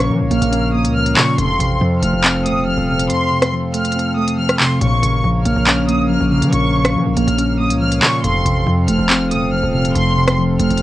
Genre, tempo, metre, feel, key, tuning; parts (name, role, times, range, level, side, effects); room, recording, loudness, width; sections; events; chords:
hip hop, drill; 140 BPM; 4/4; half-time; Bb harmonic minor; A4 = 440 Hz
warm studio violin section; melody; 0.0-10.8 s; C6 to F6; -21 LUFS; left 1 dB; cassette tape, tape echo
muted felt-like synth keys; accompaniment; 0.0-10.8 s; F2 to Db4; -17 LUFS; equal; chorus, cassette tape
pedal harmonium; sustained chords; 0.0-10.8 s; F3 to F5; -25 LUFS; right 2 dB; cassette tape
distorted 808-style bass; bass; 0.0-10.8 s; Eb1 to F3; -21 LUFS; equal; distortion
drill drum kit; drums; 0.3-10.8 s; handclaps, hi-hat, rim click; -17 LUFS; equal; vintage 12-bit sampler grit, cassette tape
light reverb; home recording on cassette; -13 LUFS; side -14 dB against mid
0.0-10.8 A section
kick muted 3.1-4.8
0.0 Bbm; 1.4 F; 4.8 Bbm; 8.2 F